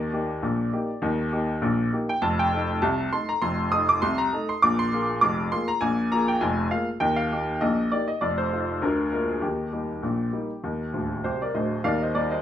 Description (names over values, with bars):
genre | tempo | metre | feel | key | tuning
ragtime piano | 100 BPM | 2/4 | swing 55% on 16ths | Eb major | A4 = 440 Hz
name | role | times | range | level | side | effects
clear upright piano | solo | 0.0-12.4 s | D1 to Eb6 | -22 LUFS | equal | none
room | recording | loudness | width
moderate large studio reverb, RT60 0.8 s | band playing live in one room | -22 LUFS | side -10 dB against mid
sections
0.0-11.8 A section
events
upright piano fill 10.9-11.8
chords
0.0 Eb; 2.2 F7; 4.6 Bb5; 7.0 Eb; 8.2 F7; 8.8 Bb7/D; 9.4 Eb